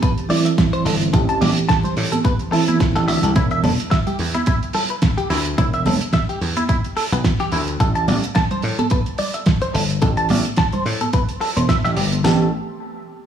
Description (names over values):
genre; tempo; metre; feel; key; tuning
nu-disco, nu disco; 108 BPM; 4/4; swing 55% on 16ths; A minor; A4 = 441 Hz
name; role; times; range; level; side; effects
mellow reed electric piano; accompaniment; 0.0-3.3, 12.2-12.5 s; E3 to G4; -21 LUFS; right 3 dB; fast tremolo, dub echo
direct-recorded clean electric guitar; riff; 0.0-12.5 s; E4 to A5; -23 LUFS; left 1 dB; analog chorus, low-pass filter, dub echo
damped 70s drum kit; drums; 0.0-12.2 s; hi-hat, snare drum; -24 LUFS; right 3 dB; studio reverb
house drum kit; drums; 0.0-12.4 s; kick drum, snare drum; -19 LUFS; equal; studio reverb
congas; percussion; 0.3-12.2 s; none; -26 LUFS; right 2 dB; none
dry thumbed slap bass; bass; 0.9-12.5 s; E1 to A2; -20 LUFS; equal; tube saturation, sidechain pumping
room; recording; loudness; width
light reverb; studio reverb; -16 LUFS; side -9 dB against mid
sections
0.0-12.2 A section; 12.2-13.3 B section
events
none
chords
0.0 Am7; 3.4 N.C.; 7.8 A7(no3); 12.2 Am9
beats
0.02 0.58 | 1.14 1.69 2.25 2.80 | 3.36 3.91 4.47 5.02 | 5.58 6.13 6.69 7.25 | 7.80 8.36 8.91 9.47 | 10.02 10.58 11.13 11.69 | 12.25